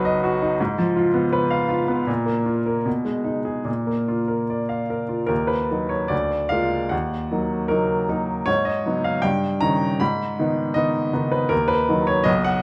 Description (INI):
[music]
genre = classical, romantic character piece for solo piano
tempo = 71-84 BPM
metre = 2/4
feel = rubato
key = Eb minor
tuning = A4 = 439 Hz
[part]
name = clear baby grand piano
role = solo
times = 0.0-12.6 s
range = B1 to Cb6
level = -22 LUFS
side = equal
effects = none
[sound]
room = moderate recital hall reverb, RT60 1.6 s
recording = none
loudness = -22 LUFS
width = mono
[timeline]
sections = 0.0-5.3 A section; 5.3-12.6 B section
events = none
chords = 0.0 B; 0.6 Fdim/Ab; 2.1 Bb5; 2.9 Abm/Cb; 3.7 Bb; 5.3 Ebm; 6.1 Bb7/D; 6.9 Ebm; 8.5 Abm7; 9.2 Eb7/G; 10.0 Abm; 11.5 Ebm